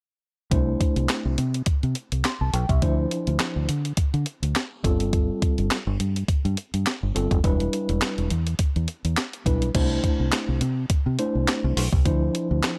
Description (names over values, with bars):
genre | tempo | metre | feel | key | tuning
early-eighties boogie funk | 104 BPM | 4/4 | swing 56% on 16ths | unclear | A4 = 436 Hz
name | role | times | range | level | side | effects
mellow tine electric piano | accompaniment | 0.5-12.8 s | F3 to C6 | -29 LUFS | equal | none
fingered electric bass | bass | 0.5-12.6 s | E1 to D3 | -26 LUFS | equal | none
clean 12-bit digital drum machine | drums | 0.5-12.8 s | crash cymbal, handclaps, hi-hat, kick drum, snare drum | -26 LUFS | equal | none
room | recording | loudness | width
little or no reverb | none | -24 LUFS | mono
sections
0.5-9.7 A section; 9.7-12.8 B section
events
none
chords
0.5 C69; 2.8 Dm9; 4.8 G9sus4; 7.4 Em7; 9.7 C69; 12.1 Dm9